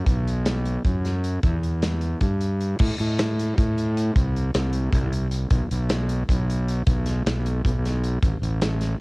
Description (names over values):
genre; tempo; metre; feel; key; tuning
math rock and midwest emo; 309 BPM (eighths); 7/8; straight; E minor; A4 = 438 Hz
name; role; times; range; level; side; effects
fuzz fingered electric bass; bass; 0.1-8.9 s; A1 to A2; -23 LUFS; equal; overdrive
modern studio drum kit; drums; 0.1-8.9 s; crash cymbal, hi-hat, kick drum, snare drum; -24 LUFS; equal; cassette tape
room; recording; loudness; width
little or no reverb; home recording on cassette; -21 LUFS; side -28 dB against mid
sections
0.0-2.8 A section; 2.8-9.0 B section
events
none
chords
none